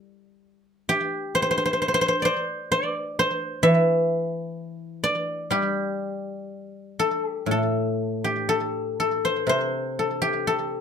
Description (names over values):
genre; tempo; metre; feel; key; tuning
chinese traditional, Chinese solo plucked strings; 60-67 BPM; 4/4; rubato; G zhi mode; A4 = 443 Hz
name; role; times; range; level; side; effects
guzheng; solo; 0.0-10.8 s; A2 to E5; -22 LUFS; left 1 dB; slapback echo
room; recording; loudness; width
light reverb; none; -22 LUFS; side -7 dB against mid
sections
0.0-7.5 A section; 7.5-10.8 B section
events
none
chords
none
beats
0.90 1.82 2.74 | 3.65 4.58 5.54 6.50 | 7.50 8.50 9.48 10.47